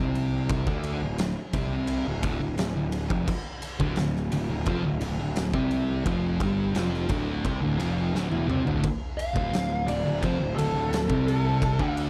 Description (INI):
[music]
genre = stoner and doom metal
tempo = 86 BPM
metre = 4/4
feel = straight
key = D minor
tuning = A4 = 441 Hz
[part]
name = thick fuzz guitar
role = riff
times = 0.0-12.1 s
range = D2 to D4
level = -34 LUFS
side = equal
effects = distortion
[part]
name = fuzz picked electric bass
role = bass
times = 0.0-12.1 s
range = D1 to D2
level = -32 LUFS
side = equal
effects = overdrive
[part]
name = oversized low-tuned drum kit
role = drums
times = 0.2-12.1 s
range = crash cymbal, kick drum, ride cymbal, snare drum, toms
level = -33 LUFS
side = equal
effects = none
[part]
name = thick fuzz guitar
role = riff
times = 3.8-12.1 s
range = D2 to D4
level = -32 LUFS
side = equal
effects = distortion
[part]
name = fuzz lead guitar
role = melody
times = 9.2-11.9 s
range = A4 to F5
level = -32 LUFS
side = equal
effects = wah, distortion, slapback echo
[sound]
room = studio ambience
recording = none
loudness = -27 LUFS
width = mono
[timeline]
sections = 0.0-8.8 A section; 8.8-12.1 B section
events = drum fill 8.2-8.8; lead electric guitar solo 8.8-12.1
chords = 0.0 Dm